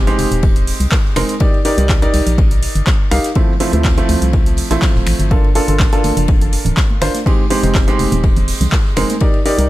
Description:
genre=deep house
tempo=123 BPM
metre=4/4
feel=straight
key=unclear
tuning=A4 = 440 Hz
part: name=felt-muted upright piano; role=stabs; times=0.0-9.7 s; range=F3 to F5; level=-18 LUFS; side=right 1 dB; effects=sidechain pumping, ping-pong delay
part: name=organ-like FM bass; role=bass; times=0.0-9.7 s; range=D1 to D2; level=-17 LUFS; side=equal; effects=sidechain pumping
part: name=punchy analog drum machine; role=drums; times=0.1-9.7 s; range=finger snaps, handclaps, hi-hat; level=-23 LUFS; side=right 1 dB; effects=none
part: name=unplugged drum kit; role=drums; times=0.2-9.6 s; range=hi-hat, ride cymbal, snare drum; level=-31 LUFS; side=left 2 dB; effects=sidechain pumping on cymbals, high-pass filter on cymbals, sidechain pumping on hats, high-pass filter on hats, high-pass filter on snare, high-pass filter on room
part: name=electronic kick drum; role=drums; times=0.4-9.3 s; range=none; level=-14 LUFS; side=equal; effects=none
part: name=congas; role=percussion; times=6.0-9.2 s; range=none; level=-24 LUFS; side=right 4 dB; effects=sidechain pumping on perc
room=small room ambience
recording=none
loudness=-12 LUFS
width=side -16 dB against mid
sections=0.0-9.7 A section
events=none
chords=0.0 Fm9; 1.4 Cm9; 3.4 Dm9; 5.3 Gm9; 7.3 Fm9

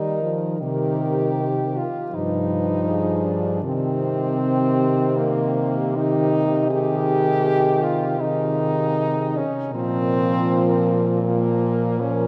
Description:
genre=classical, lyrical piece for horn quartet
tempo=79 BPM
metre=4/4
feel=rubato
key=Ab major from 6.7 s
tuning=A4 = 440 Hz
part: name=clear French horn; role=melody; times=0.0-12.3 s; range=G4 to B4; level=-31 LUFS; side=equal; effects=none
part: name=warm French horn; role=second line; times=0.0-12.3 s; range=Bb3 to G4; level=-26 LUFS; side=equal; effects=none
part: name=warm French horn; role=accompaniment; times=0.0-12.3 s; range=Eb3 to G3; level=-27 LUFS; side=equal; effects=none
part: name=warm French horn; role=bass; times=0.0-12.3 s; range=G2 to Eb3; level=-27 LUFS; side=equal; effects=none
room=wet cathedral reverb, RT60 4.8 s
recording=none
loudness=-21 LUFS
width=mono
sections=0.0-12.3 A section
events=none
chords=0.0 Eb; 0.6 Cm7; 2.1 G7; 3.6 Cm; 9.7 Bb5

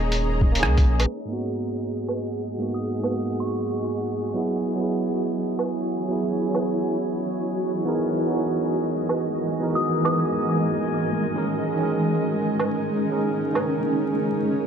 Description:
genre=future garage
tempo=137 BPM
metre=4/4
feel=swing 66% on 16ths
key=G# minor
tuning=A4 = 440 Hz
part: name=bright tine electric piano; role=accompaniment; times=0.0-14.7 s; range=G#2 to A#4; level=-26 LUFS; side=right 2 dB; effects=sidechain pumping, ping-pong delay
part: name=granular cloud pad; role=sustained chords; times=0.0-14.7 s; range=E3 to A#5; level=-26 LUFS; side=equal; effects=built-in reverb, sidechain pumping
part: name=warm sub bass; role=bass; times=0.0-1.1 s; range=D#1 to C#2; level=-22 LUFS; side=equal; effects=sidechain pumping
part: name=drifting glass-harmonics texture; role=texture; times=0.0-14.7 s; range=D#4 to G#5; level=-35 LUFS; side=equal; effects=chorus, built-in reverb
part: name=lo-fi sampler-style drum kit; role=drums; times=0.1-13.7 s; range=hi-hat, rim click, woodblock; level=-26 LUFS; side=right 2 dB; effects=overdrive
part: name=electronic kick drum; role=drums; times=0.4-0.8 s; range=none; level=-20 LUFS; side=equal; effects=overdrive
part: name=soft synth bell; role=melody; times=2.7-3.8, 9.8-10.4 s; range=C#6 to D#6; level=-30 LUFS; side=left 2 dB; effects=chorus, ping-pong delay
room=wet scoring stage reverb, RT60 2.0 s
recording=vinyl crackle, low-pass filter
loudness=-22 LUFS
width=side -7 dB against mid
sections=0.0-1.1 A section; 1.1-14.7 B section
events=none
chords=0.0 D#7sus4; 1.1 G#m7; 4.6 F#7sus4; 11.6 G#5

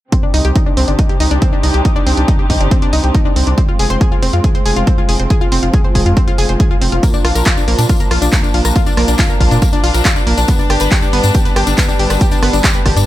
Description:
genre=uplifting trance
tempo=139 BPM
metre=4/4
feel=straight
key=C minor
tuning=A4 = 441 Hz
part: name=warm chamber string section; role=sustained chords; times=0.1-13.1 s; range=C3 to G4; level=-20 LUFS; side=equal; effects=sidechain pumping, low-pass filter
part: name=analog pluck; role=arpeggios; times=0.1-13.0 s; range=Bb3 to C5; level=-19 LUFS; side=left 3 dB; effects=chorus, sidechain pumping, digital delay
part: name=electronic kick drum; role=drums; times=0.1-12.9 s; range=none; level=-13 LUFS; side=equal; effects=overdrive
part: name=punchy analog drum machine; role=drums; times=0.1-13.1 s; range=handclaps, hi-hat, rim click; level=-20 LUFS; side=right 2 dB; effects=none
part: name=gritty driven synth bass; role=bass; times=0.3-13.0 s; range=F1 to Bb2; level=-14 LUFS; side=equal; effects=sidechain pumping
part: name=tambourine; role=percussion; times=7.0-13.1 s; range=none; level=-25 LUFS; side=left 3 dB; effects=none
room=digital ambience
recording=none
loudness=-10 LUFS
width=side -14 dB against mid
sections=0.1-13.1 A section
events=filter sweep on string section 0.1-13.1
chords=0.1 Cmadd9; 3.6 Fm; 7.0 Bb; 10.5 G

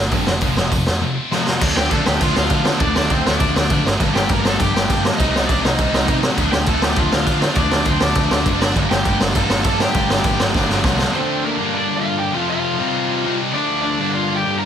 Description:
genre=punk rock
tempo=201 BPM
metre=4/4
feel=straight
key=G minor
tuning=A4 = 440 Hz
part: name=scooped high-gain guitar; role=riff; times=0.0-14.7 s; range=F2 to Eb4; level=-26 LUFS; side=left 1 dB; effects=distortion
part: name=overdriven picked electric bass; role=bass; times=0.0-11.0 s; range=F1 to D3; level=-23 LUFS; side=right 1 dB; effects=none
part: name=sludgy distorted guitar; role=riff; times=0.1-14.7 s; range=F2 to D4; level=-24 LUFS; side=left 12 dB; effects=overdrive
part: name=tight distorted guitar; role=riff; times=0.1-14.7 s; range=F2 to Eb4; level=-25 LUFS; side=right 12 dB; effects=distortion
part: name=raw garage drum kit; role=drums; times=0.1-11.1 s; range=crash cymbal, hi-hat, kick drum, snare drum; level=-18 LUFS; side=equal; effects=none
part: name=cranked stack guitar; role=melody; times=1.8-14.7 s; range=Bb3 to Bb5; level=-22 LUFS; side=equal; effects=overdrive
room=little or no reverb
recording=none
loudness=-15 LUFS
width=side -9 dB against mid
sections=0.0-1.6 A section; 1.6-11.1 B section; 11.1-14.7 C section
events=drum fill 1.3, 10.5-11.1; half time 11.1-14.7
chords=0.3 F; 1.6 Dm; 3.9 Gm; 5.2 Cm; 6.4 Dm; 8.6 Gm; 11.1 Dm; 11.6 Gm; 12.3 F; 12.8 Cm; 13.5 Dm; 14.0 Gm

